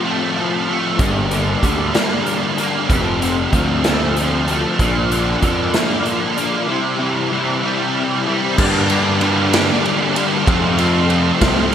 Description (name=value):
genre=indie rock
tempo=63 BPM (dotted quarters)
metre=6/8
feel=straight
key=F major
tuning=A4 = 440 Hz
part: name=overdriven semi-hollow guitar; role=riff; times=0.0-11.7 s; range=F2 to F4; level=-20 LUFS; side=left 6 dB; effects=ensemble chorus
part: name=scooped high-gain guitar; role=riff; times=0.0-11.7 s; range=F2 to G4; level=-19 LUFS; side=right 5 dB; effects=distortion, analog chorus, digital delay
part: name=fuzz picked electric bass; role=bass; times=1.0-5.7, 8.6-11.7 s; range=F1 to G2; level=-20 LUFS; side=right 1 dB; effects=overdrive
part: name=raw garage drum kit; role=drums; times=1.0-11.7 s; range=crash cymbal, hi-hat, kick drum, ride cymbal, snare drum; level=-20 LUFS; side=right 1 dB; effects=gated reverb
room=light reverb, small room ambience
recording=bright 1980s-style digital production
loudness=-15 LUFS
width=side -9 dB against mid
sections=0.0-8.6 A section; 8.6-11.7 B section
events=none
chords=0.0 F/A; 1.0 Gm; 2.9 F; 4.8 Bb; 6.7 C; 8.6 Gm; 10.5 F